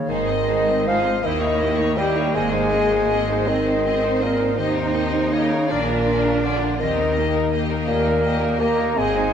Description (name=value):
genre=classical, slow romantic movement for symphony orchestra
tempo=54 BPM (dotted quarters)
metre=6/8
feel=rubato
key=Ab major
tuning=A4 = 440 Hz
part: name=dark clarinet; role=second line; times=0.0-9.3 s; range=Bb4 to Bb5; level=-29 LUFS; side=equal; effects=none
part: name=silver concert flute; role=second line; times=0.0-9.3 s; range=Bb4 to Bb5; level=-28 LUFS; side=equal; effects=none
part: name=warm bassoon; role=accompaniment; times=0.0-9.3 s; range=Bb2 to Bb3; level=-23 LUFS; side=right 1 dB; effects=none
part: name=mellow French horn section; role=sustained chords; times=0.0-9.3 s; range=Bb3 to Bb4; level=-28 LUFS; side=left 6 dB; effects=none
part: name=concert harp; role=arpeggios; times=0.0-9.3 s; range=Ab2 to Bb4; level=-31 LUFS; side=left 9 dB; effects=none
part: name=clear symphonic violin section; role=melody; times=0.1-9.3 s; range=Bb4 to Eb5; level=-30 LUFS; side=left 6 dB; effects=none
part: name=warm symphonic violin section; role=second line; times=0.1-9.3 s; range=Fb4 to C5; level=-32 LUFS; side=left 3 dB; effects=none
part: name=clear symphonic viola section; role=accompaniment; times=0.1-9.3 s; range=Bb3 to F4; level=-31 LUFS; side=right 2 dB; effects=none
part: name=clear symphonic double bass section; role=bass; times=0.1-9.3 s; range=Ab1 to Eb2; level=-27 LUFS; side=right 4 dB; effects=none
part: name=warm symphonic cello section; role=bass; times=0.1-9.3 s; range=Ab3 to Eb4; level=-26 LUFS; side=right 2 dB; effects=none
room=moderate scoring stage reverb, RT60 2.1 s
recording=none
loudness=-18 LUFS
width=side -8 dB against mid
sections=0.1-9.3 A section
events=none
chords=0.1 Ab; 1.2 Eb7b9; 2.3 Ab; 4.6 Eb; 5.7 Bb7; 6.8 Eb